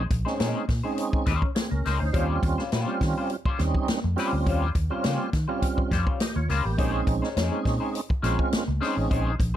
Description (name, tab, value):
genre	funk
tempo	103 BPM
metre	4/4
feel	straight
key	Bb dorian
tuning	A4 = 440 Hz
part	clean electric guitar	accompaniment	0.0-9.6 s	G3 to C5	-31 LUFS	left 7 dB	wah
part	tonewheel organ	stabs	0.0-9.6 s	G3 to Eb5	-29 LUFS	right 4 dB	overdrive, chorus vibrato, slow rotary speaker
part	vintage muted fingered electric bass	bass	0.0-9.5 s	A1 to Eb3	-27 LUFS	equal	none
part	swinging big-band drum kit	drums	0.1-9.5 s	hi-hat, kick drum, snare drum	-27 LUFS	equal	none
room	little or no reverb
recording	dark, warm production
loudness	-23 LUFS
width	side -11 dB against mid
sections	0.0-9.6 A section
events	none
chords	0.0 Bbm11; 2.1 Eb13; 6.8 Bbm11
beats	0.40 0.98 1.56 | 2.14 2.72 3.30 3.88 | 4.46 5.04 5.62 6.21 | 6.79 7.37 7.95 8.53 | 9.11